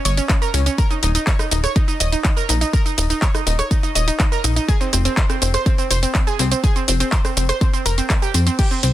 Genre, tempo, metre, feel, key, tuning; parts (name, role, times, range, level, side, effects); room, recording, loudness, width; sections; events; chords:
progressive house; 123 BPM; 4/4; straight; F minor; A4 = 440 Hz
analog pluck; arpeggios; 0.1-8.9 s; C4 to Eb5; -22 LUFS; right 1 dB; chorus, vintage 12-bit sampler grit, sidechain pumping, tape echo
plucky analog bass; bass; 0.1-8.9 s; Eb1 to F2; -18 LUFS; equal; sidechain pumping
house drum kit; drums; 0.1-8.9 s; crash cymbal, handclaps, hi-hat, rim click, shaker; -22 LUFS; right 1 dB
electronic kick drum; drums; 0.3-8.7 s; -17 LUFS; equal
digital ambience; dense, heavily limited modern master; -16 LUFS; side -13 dB against mid
0.0-8.9 A section
0.0 Gdim; 0.8 Eb5; 4.7 F5